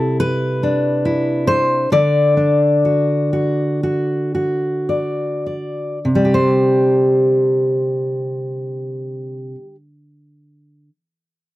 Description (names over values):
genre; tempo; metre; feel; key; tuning
folk, solo fingerstyle acoustic guitar; 49-72 BPM; 4/4; straight; C major; A4 = 441 Hz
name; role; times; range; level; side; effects
fingerpicked steel-string acoustic guitar; solo; 0.0-10.9 s; C3 to D5; -15 LUFS; equal; none
room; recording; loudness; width
light reverb; dry, close 1970s-style studio recording; -15 LUFS; side -16 dB against mid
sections
0.0-6.0 A section; 6.0-10.9 B section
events
slowing down 0.0-6.0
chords
0.0 Cadd9; 1.9 D; 6.0 Csus2